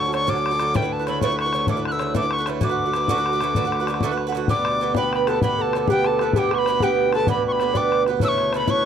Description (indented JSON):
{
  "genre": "celtic folk, Celtic slide",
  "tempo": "129 BPM (dotted quarters)",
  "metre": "12/8",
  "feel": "straight",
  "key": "unclear",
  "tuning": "A4 = 440 Hz",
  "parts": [
    { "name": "bright wooden whistle", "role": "melody", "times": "0.0-8.9 s", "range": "G5 to F#6", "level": "-24 LUFS", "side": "left 2 dB", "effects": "none" },
    { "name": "Irish bouzouki", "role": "accompaniment", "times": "0.0-8.9 s", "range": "C#3 to B4", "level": "-23 LUFS", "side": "right 9 dB", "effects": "none" },
    { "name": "pedal harmonium", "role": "drone", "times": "0.0-8.9 s", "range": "D2 to D3", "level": "-29 LUFS", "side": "left 4 dB", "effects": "none" },
    { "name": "bodhran", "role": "percussion", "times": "0.1-8.8 s", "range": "none", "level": "-26 LUFS", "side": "left 4 dB", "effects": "none" },
    { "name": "baroque flute", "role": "second line", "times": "4.5-8.9 s", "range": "G4 to D5", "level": "-24 LUFS", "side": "left 3 dB", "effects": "none" }
  ],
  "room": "little or no reverb",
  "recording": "dry, close 1970s-style studio recording",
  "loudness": "-19 LUFS",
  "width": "side -8 dB against mid",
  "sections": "0.0-4.5 A section; 4.5-8.9 B section",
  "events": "none",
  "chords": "0.0 Dmaj7; 0.8 Aadd9; 2.6 D6; 4.5 G; 8.2 Aadd9"
}